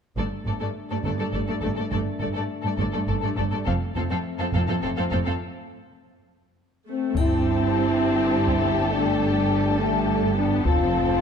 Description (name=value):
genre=cinematic, epic orchestral film score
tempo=69 BPM (dotted quarters)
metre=6/8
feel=straight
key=unclear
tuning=A4 = 440 Hz
part: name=warm symphonic violin section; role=melody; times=0.2-11.2 s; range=D5 to A5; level=-35 LUFS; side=left 5 dB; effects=none
part: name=dark symphonic violin section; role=second line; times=0.2-11.2 s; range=G4 to A4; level=-30 LUFS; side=left 5 dB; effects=none
part: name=warm symphonic viola section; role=accompaniment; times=0.2-11.2 s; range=D3 to C4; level=-30 LUFS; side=right 2 dB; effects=none
part: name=mellow French horn section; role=sustained chords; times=0.2-11.2 s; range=A3 to F4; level=-27 LUFS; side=left 3 dB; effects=none
part: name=rich symphonic double bass section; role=bass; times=0.2-11.2 s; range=F1 to G1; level=-28 LUFS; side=right 3 dB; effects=none
part: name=warm symphonic cello section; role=bass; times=0.2-11.2 s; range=F2 to G2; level=-29 LUFS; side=right 3 dB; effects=none
part: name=taiko ensemble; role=drums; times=7.2-11.2 s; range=none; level=-26 LUFS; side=left 1 dB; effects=none
part: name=triangle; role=percussion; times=7.2-8.3 s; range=none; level=-50 LUFS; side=left 5 dB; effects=none
room=moderate scoring stage reverb, RT60 1.9 s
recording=dark, warm production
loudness=-21 LUFS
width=side -7 dB against mid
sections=0.2-7.2 A section; 7.2-11.2 B section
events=break 5.4-7.2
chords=0.2 Gsus2; 3.7 F; 7.2 Gsus2; 10.7 F